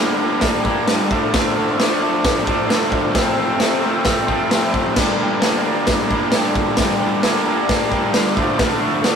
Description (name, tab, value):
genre	garage rock duo or trio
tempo	132 BPM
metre	4/4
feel	straight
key	G minor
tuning	A4 = 444 Hz
part	raw garage guitar	riff	0.0-9.2 s	F2 to D4	-17 LUFS	equal	overdrive
part	raw garage drum kit	drums	0.4-9.2 s	crash cymbal, hi-hat, kick drum, snare drum	-19 LUFS	equal	none
room	wet small room reverb, RT60 0.5 s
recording	rough rehearsal-room recording, warm saturation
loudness	-15 LUFS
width	side -7 dB against mid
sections	0.0-9.2 A section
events	none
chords	0.0 Gm; 1.1 Dm; 3.2 F; 5.0 Gm; 8.4 Dm